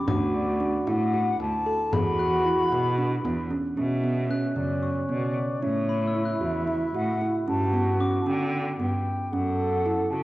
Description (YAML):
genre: contemporary instrumental, chamber music in an uneven meter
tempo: 227 BPM (eighths)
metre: 7/8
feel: straight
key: B minor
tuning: A4 = 440 Hz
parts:
  - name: baroque flute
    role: melody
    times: 0.0-10.2 s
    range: C#5 to B5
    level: -30 LUFS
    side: left 2 dB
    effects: none
  - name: breathy trombone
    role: second line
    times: 0.0-10.2 s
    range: C#4 to A4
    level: -30 LUFS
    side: right 1 dB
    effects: none
  - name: glockenspiel with hard plastic mallets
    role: texture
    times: 0.0-9.6 s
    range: B5 to F#6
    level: -40 LUFS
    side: left 4 dB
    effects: none
  - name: kalimba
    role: arpeggios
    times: 0.1-10.2 s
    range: C#3 to A4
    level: -28 LUFS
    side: right 2 dB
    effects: none
  - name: rich cello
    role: bass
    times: 0.1-10.2 s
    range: D2 to D3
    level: -29 LUFS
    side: equal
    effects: none
  - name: frame drum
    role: percussion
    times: 0.1-3.6 s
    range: none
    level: -31 LUFS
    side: left 2 dB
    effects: none
room: light reverb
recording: worn, warbling old tape, cassette tape, warbly pitch drift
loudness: -23 LUFS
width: side -16 dB against mid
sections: 0.0-3.8 A section; 3.8-10.2 B section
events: none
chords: 0.1 D; 1.9 E7sus2; 3.8 Bmadd9; 5.6 A; 7.5 Gmaj7; 9.3 F#m7